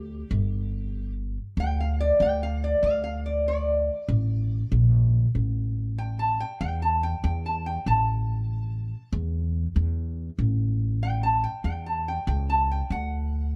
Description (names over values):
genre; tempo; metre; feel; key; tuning
acoustic country blues, solo or duo; 95 BPM; 4/4; swing 61% on 8ths; unclear; A4 = 440 Hz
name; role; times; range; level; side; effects
lap resonator guitar; melody; 0.0-13.6 s; G4 to A5; -28 LUFS; equal; plate reverb
upright bass; bass; 0.0-13.6 s; G1 to E2; -28 LUFS; equal; none
room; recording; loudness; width
light reverb; dark, warm production, lossy compression artefacts; -26 LUFS; mono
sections
0.0-13.6 A section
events
none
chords
0.0 G5; 2.8 D5; 5.3 A5; 12.9 D